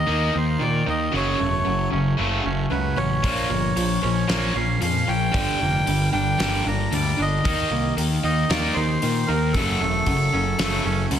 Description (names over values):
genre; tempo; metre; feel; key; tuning
quiet-loud alternative rock; 114 BPM; 4/4; straight; unclear; A4 = 440 Hz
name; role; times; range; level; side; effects
melodica; melody; 0.0-11.1 s; A4 to Bb5; -25 LUFS; equal; none
twangy electric guitar; arpeggios; 0.0-11.2 s; F#2 to Eb4; -30 LUFS; right 6 dB; slapback echo
distorted electric guitar; riff; 0.0-11.2 s; F#2 to Eb4; -24 LUFS; left 1 dB; overdrive, slapback echo
fuzz picked electric bass; bass; 0.0-11.2 s; E1 to Bb2; -26 LUFS; equal; overdrive
loose indie drum kit; drums; 3.2-11.2 s; hi-hat, kick drum, snare drum; -28 LUFS; left 1 dB; none
room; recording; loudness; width
moderate scoring stage reverb, RT60 1.8 s, small room ambience; big arena sound; -19 LUFS; side -9 dB against mid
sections
0.0-11.2 A section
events
half time 0.0-11.2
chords
0.0 Eb5; 1.1 F#m; 3.2 Bbm; 5.3 Gm; 7.4 Eb5; 9.5 F#m